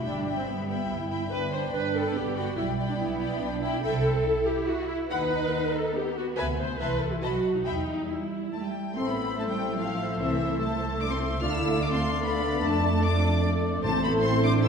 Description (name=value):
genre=classical, dramatic, fast romantic movement for symphony orchestra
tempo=136-150 BPM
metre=3/4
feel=straight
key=E minor, A minor from 9.0 s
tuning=A4 = 443 Hz
part: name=warm symphonic violin section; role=melody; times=0.0-14.7 s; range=E5 to F6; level=-34 LUFS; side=left 4 dB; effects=none
part: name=warm symphonic violin section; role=second line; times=0.0-14.7 s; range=A4 to A5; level=-35 LUFS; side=left 3 dB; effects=none
part: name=warm symphonic viola section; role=accompaniment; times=0.0-14.7 s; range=A3 to C5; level=-30 LUFS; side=equal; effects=none
part: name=warm symphonic cello section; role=bass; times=0.0-14.7 s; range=E3 to F4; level=-32 LUFS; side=right 3 dB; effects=none
part: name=warm symphonic double bass section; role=bass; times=0.0-14.7 s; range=G1 to F2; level=-30 LUFS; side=right 2 dB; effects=none
part: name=mellow clarinet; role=second line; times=9.0-14.7 s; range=A4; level=-37 LUFS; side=left 3 dB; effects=none
part: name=warm oboe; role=second line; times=9.0-14.7 s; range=C5 to E5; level=-34 LUFS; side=left 1 dB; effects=none
part: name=dark bassoon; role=accompaniment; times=9.0-14.7 s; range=A3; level=-36 LUFS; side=equal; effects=none
part: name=mellow French horn section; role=sustained chords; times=9.0-14.7 s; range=A3 to D4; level=-32 LUFS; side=left 4 dB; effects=none
part: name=timpani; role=percussion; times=13.8-14.4 s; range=A2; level=-34 LUFS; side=right 1 dB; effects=none
room=wet scoring stage reverb, RT60 1.6 s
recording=heard from further back in the room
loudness=-25 LUFS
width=side -6 dB against mid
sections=0.0-9.0 A section; 9.0-14.7 B section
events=none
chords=0.1 Em/G; 1.3 G; 2.6 G/B; 3.8 C; 5.1 B/D#; 6.4 E7/D; 6.8 Am/C; 7.2 B7; 7.7 Em; 9.0 Am; 10.2 Am/C; 11.4 Dm; 12.6 Dm/F; 13.8 Am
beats=| 0.05 0.47 0.89 | 1.31 1.73 2.15 | 2.56 2.98 3.40 | 3.83 4.25 4.67 | 5.11 5.53 5.96 | 6.38 6.81 7.24 | 7.67 8.10 8.54 | 8.98 9.39 9.79 | 10.20 10.61 11.01 | 11.42 11.82 12.23 | 12.63 13.04 13.44 | 13.84 14.24 14.65